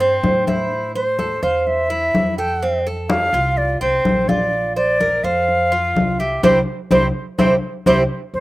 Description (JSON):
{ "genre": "latin, Cuban son and guajira", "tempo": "126 BPM", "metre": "4/4", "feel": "straight", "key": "unclear", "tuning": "A4 = 440 Hz", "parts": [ { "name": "reedy concert flute", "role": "melody", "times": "0.0-8.4 s", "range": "C5 to G5", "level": "-19 LUFS", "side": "equal", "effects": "slapback echo" }, { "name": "Cuban tres", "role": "arpeggios", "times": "0.0-8.0 s", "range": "C4 to C5", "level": "-20 LUFS", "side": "right 2 dB", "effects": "slapback echo" }, { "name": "upright bass", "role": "bass", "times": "0.0-8.4 s", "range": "Bb1 to A2", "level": "-26 LUFS", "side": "equal", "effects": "none" }, { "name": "congas", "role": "percussion", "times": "0.0-8.4 s", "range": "none", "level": "-21 LUFS", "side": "left 2 dB", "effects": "none" } ], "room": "light reverb", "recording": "recorded outdoors, with no room sound", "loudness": "-15 LUFS", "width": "side -18 dB against mid", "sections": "0.0-8.3 A section", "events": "band accent 6.4-8.3", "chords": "0.0 C; 0.7 Am; 2.6 F; 4.5 Bbadd9; 6.4 C" }